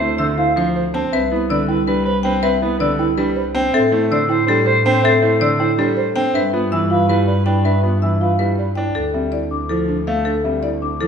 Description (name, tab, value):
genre	classical, minimalist pattern music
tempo	322 BPM (eighths)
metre	7/8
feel	straight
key	D dorian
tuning	A4 = 440 Hz
part	marimba with medium hard mallets	melody	0.0-11.1 s	A4 to A5	-22 LUFS	left 5 dB	none
part	mellow soprano saxophone	second line	0.0-8.7 s	B4 to C5	-24 LUFS	right 2 dB	none
part	bright concert grand piano	accompaniment	0.0-11.1 s	D3 to D4	-23 LUFS	equal	none
part	buzzing marimba with soft mallets	arpeggios	0.0-11.1 s	C4 to D5	-22 LUFS	right 6 dB	none
part	celesta	arpeggios	0.0-11.1 s	E5 to E6	-23 LUFS	left 2 dB	none
part	rich symphonic double bass section	bass	0.0-11.1 s	C2 to A2	-22 LUFS	equal	none
room	wet stone room reverb, RT60 1.3 s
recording	none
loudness	-15 LUFS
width	side -7 dB against mid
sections	0.0-9.0 A section; 9.0-11.1 B section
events	none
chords	0.0 Dm7; 1.1 Cmaj7; 3.7 Am7; 6.3 G7; 9.0 Dm9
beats	0.01 0.20 0.38 0.57 0.76 0.94 | 1.13 1.31 1.50 1.69 1.87 2.06 2.25 | 2.43 2.62 2.81 2.99 3.18 3.36 3.55 | 3.74 3.92 4.11 4.29 4.48 4.67 4.85 | 5.04 5.23 5.41 5.60 5.79 5.97 6.16 | 6.34 6.53 6.72 6.90 7.09 7.28 7.46 | 7.65 7.84 8.02 8.21 8.39 8.58 8.77 | 8.95 9.14 9.33 9.51 9.70 9.88 10.07 | 10.26 10.44 10.63 10.82 11.00